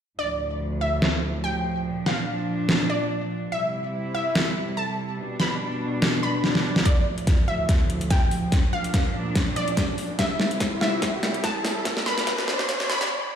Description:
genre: heavy wobble dubstep.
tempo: 144 BPM.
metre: 4/4.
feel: swing 55% on 16ths, half-time.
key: D minor.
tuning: A4 = 440 Hz.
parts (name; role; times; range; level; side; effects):
wide unison pluck; melody; 0.2-13.1 s; D5 to B5; -29 LUFS; equal; ping-pong delay.
rich studio string section; sustained chords; 0.2-13.4 s; D2 to E4; -28 LUFS; equal; sidechain pumping, low-pass filter.
dubstep drum kit; drums; 1.0-13.1 s; hi-hat, snare drum; -25 LUFS; equal; overdrive, low-pass filter on snare, low-pass filter on hats, low-pass filter on room.
swell and riser; sound effects; 6.3-13.1 s; none; -31 LUFS; equal; none.
electronic kick drum; drums; 6.9-12.8 s; none; -23 LUFS; equal; overdrive.
room: moderate plate reverb, RT60 0.9 s.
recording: played on a big sound system in a bare room, stone room reverb, high-pass filter.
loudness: -22 LUFS.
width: side -8 dB against mid.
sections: 0.2-6.9 A section; 6.9-13.4 B section.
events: filter sweep on string section 0.2-6.9; swell 6.3-6.9; drum fill 6.4-6.9, 6.9-13.1; build-up 6.9-13.4; filter sweep 6.9-13.4; riser 9.1-13.1; break 13.1.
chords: 0.2 Dm; 1.9 Bb; 3.5 C; 5.2 G/B; 6.9 Dm; 8.5 Bb; 10.2 C; 11.9 G/B.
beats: | 0.19 0.60 1.02 1.44 | 1.85 2.27 2.69 3.10 | 3.52 3.94 4.36 4.77 | 5.19 5.61 6.02 6.44 | 6.86 7.27 7.69 8.11 | 8.52 8.94 9.36 9.77 | 10.19 10.61 11.02 11.44 | 11.86 12.27 12.69 13.11.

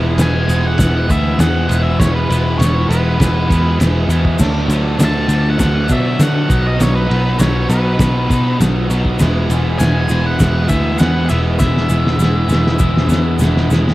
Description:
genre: garage rock duo or trio.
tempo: 100 BPM.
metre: 4/4.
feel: straight.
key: E mixolydian.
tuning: A4 = 440 Hz.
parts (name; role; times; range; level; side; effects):
overdriven semi-hollow guitar; riff; 0.0-13.9 s; B2 to E4; -20 LUFS; equal; cassette tape.
picked electric bass; bass; 0.0-13.9 s; E1 to D3; -15 LUFS; equal; none.
octave-fuzz lead guitar; melody; 0.2-13.4 s; B4 to A5; -22 LUFS; equal; distortion, cassette tape.
cloth-damped thuddy drum kit; drums; 0.2-13.9 s; crash cymbal, kick drum, ride cymbal, snare drum; -18 LUFS; equal; cassette tape.
tube shaker; percussion; 0.2-13.8 s; none; -32 LUFS; left 4 dB; none.
room: little or no reverb.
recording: home recording on cassette.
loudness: -12 LUFS.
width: side -17 dB against mid.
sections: 0.0-13.9 A section.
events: drum fill 11.6-13.9.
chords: 0.0 E; 4.4 D; 6.5 B; 9.2 E.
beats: 0.19 0.79 1.39 | 2.00 2.60 3.20 3.80 | 4.40 5.00 5.60 6.20 | 6.80 7.40 8.00 8.60 | 9.20 9.80 10.40 10.99 | 11.60 12.19 12.79 13.39.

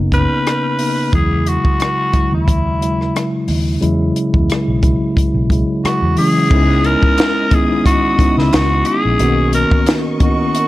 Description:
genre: lush 1970s-style soul.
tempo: 89 BPM.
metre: 4/4.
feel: swing 54% on 16ths.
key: unclear.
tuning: A4 = 440 Hz.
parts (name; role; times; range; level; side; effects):
mellow tine electric piano; accompaniment; 0.0-10.7 s; C#3 to F#4; -17 LUFS; left 1 dB; medium stereo tremolo.
vintage muted fingered electric bass; bass; 0.0-9.7 s; F#1 to E3; -17 LUFS; equal; none.
raspy tenor saxophone; melody; 0.1-10.7 s; E4 to B4; -18 LUFS; left 1 dB; none.
compact cocktail drum kit; drums; 0.1-10.7 s; crash cymbal, hi-hat, kick drum, rim click, snare drum; -17 LUFS; equal; none.
warm studio string section; sustained chords; 6.5-10.7 s; B3 to D#6; -28 LUFS; right 2 dB; none.
group handclap; percussion; 7.2-10.0 s; none; -31 LUFS; right 6 dB; none.
room: studio reverb.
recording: none.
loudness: -12 LUFS.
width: side -17 dB against mid.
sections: 0.0-6.5 A section; 6.5-10.7 B section.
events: none.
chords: 0.0 Bmaj9; 1.1 E69; 6.5 C#m9; 9.2 Bmaj9.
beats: 0.46 | 1.13 1.80 2.47 3.15 | 3.82 4.49 5.16 5.83 | 6.51 7.18 7.85 8.52 | 9.20 9.87 10.54.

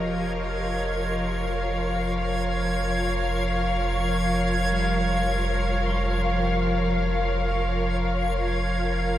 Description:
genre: ambient.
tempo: free time.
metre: none.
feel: none.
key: unclear.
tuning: A4 = 440 Hz.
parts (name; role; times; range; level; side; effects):
rich symphonic string section; sustained chords; 0.0-9.2 s; F3 to F5; -25 LUFS; equal; none.
warm sub bass; bass; 0.0-9.2 s; F1; -28 LUFS; equal; none.
backwards swelling texture; texture; 0.0-9.2 s; Ab6; -34 LUFS; right 3 dB; built-in reverb.
clean electric guitar; arpeggios; 4.7-8.7 s; G3 to C6; -38 LUFS; left 1 dB; none.
room: wet huge ambient reverb, RT60 7.7 s.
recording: dark, warm production.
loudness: -22 LUFS.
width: side -12 dB against mid.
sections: 0.0-9.2 A section.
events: none.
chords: 0.0 Bbm/F.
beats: free time.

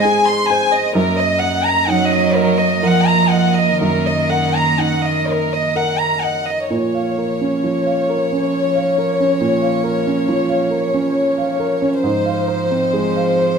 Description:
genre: neoclassical piano and strings.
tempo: 60-69 BPM.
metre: 3/4.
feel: rubato.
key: unclear.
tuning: A4 = 439 Hz.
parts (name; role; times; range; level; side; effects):
warm chamber violin section; melody; 0.0-13.6 s; Bb4 to C6; -17 LUFS; left 2 dB; plate reverb.
warm cello; second line; 0.0-13.6 s; Eb3 to Ab3; -21 LUFS; right 5 dB; none.
warm upright piano; accompaniment; 0.0-13.6 s; Gb2 to F5; -20 LUFS; right 2 dB; none.
warm chamber string section; sustained chords; 0.0-6.7 s; Bb3 to Eb5; -26 LUFS; left 4 dB; none.
room: moderate large studio reverb, RT60 0.9 s.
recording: none.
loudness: -14 LUFS.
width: side -6 dB against mid.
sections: 0.0-6.7 A section; 6.7-13.6 B section.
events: none.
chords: 0.0 Ab; 1.0 Ebm/Gb; 6.7 Bbm; 12.0 Fm/Ab.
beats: 0.05 | 0.95 1.87 2.82 | 3.79 4.79 5.75 | 6.71 7.63 8.52 | 9.40 10.28 11.16 | 12.04 12.93.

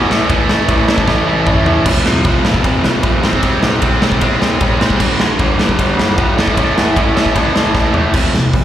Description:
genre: punk rock.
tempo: 153 BPM.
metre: 4/4.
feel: straight.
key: unclear.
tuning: A4 = 436 Hz.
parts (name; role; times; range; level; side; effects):
cranked stack guitar; riff; 0.0-8.6 s; F2 to C4; -15 LUFS; equal; overdrive.
clear baby grand piano; bass; 0.0-8.6 s; E1 to E2; -17 LUFS; equal; none.
big rock drum kit; drums; 0.1-8.6 s; crash cymbal, hi-hat, kick drum, ride cymbal, snare drum, toms; -15 LUFS; equal; none.
room: small room ambience.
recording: live gig heard through the venue's PA, recital hall reverb.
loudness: -11 LUFS.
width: side -11 dB against mid.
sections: 0.0-1.9 A section; 1.9-8.1 B section.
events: drum fill 1.1-1.9, 7.7-8.1.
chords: 0.1 A5; 1.9 F5; 3.2 C/E; 5.0 G5; 6.4 A5; 8.1 F5.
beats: | 0.29 0.69 1.08 1.47 | 1.86 2.25 2.64 3.04 | 3.43 3.82 4.21 4.60 | 5.00 5.39 5.78 6.17 | 6.57 6.96 7.35 7.74 | 8.14 8.53.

